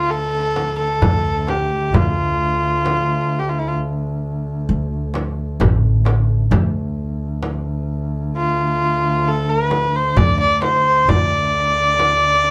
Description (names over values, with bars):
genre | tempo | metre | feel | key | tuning
Turkish makam ensemble | 131 BPM (eighths) | 10/8 | straight | D makam huseyni | A4 = 436 Hz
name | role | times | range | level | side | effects
clear kamancheh | melody | 0.0-12.5 s | E4-25c to D5 | -20 LUFS | equal | none
rich double bass | drone | 0.0-12.5 s | D2 | -26 LUFS | equal | none
darbuka | percussion | 0.1-12.5 s | none | -26 LUFS | equal | none
frame drum | percussion | 0.6-12.2 s | none | -24 LUFS | equal | none
upright bass | bass | 1.0-12.5 s | A1 to D2 | -24 LUFS | equal | none
room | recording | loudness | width
wet studio reverb, RT60 0.5 s | band playing live in one room | -18 LUFS | mono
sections
0.0-12.5 A section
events
none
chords
none